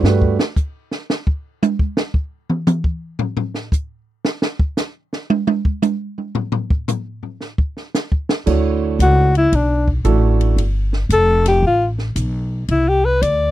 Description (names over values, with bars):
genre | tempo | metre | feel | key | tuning
jazz, small-group swing and bop | 114 BPM | 4/4 | swing 67% on 8ths | D major | A4 = 440 Hz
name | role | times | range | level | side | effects
warm grand piano | accompaniment | 0.0-0.4, 8.5-10.6 s | A3 to C#5 | -19 LUFS | right 8 dB | none
upright bass | bass | 0.0-0.4, 8.5-13.5 s | F1 to G2 | -16 LUFS | equal | none
compact cocktail drum kit | drums | 0.0-13.4 s | crash cymbal, hi-hat, kick drum, ride cymbal, snare drum, toms | -18 LUFS | equal | none
clear alto saxophone | melody | 9.0-13.5 s | D4 to D5 | -15 LUFS | left 2 dB | none
room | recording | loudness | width
little or no reverb | dry, close 1970s-style studio recording | -16 LUFS | side -14 dB against mid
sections
0.0-8.5 A section; 8.5-13.5 B section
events
drum solo 0.0-8.5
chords
0.0 Gmaj7; 2.1 N.C.; 8.5 Dmaj9; 10.6 G9; 12.7 Cmaj7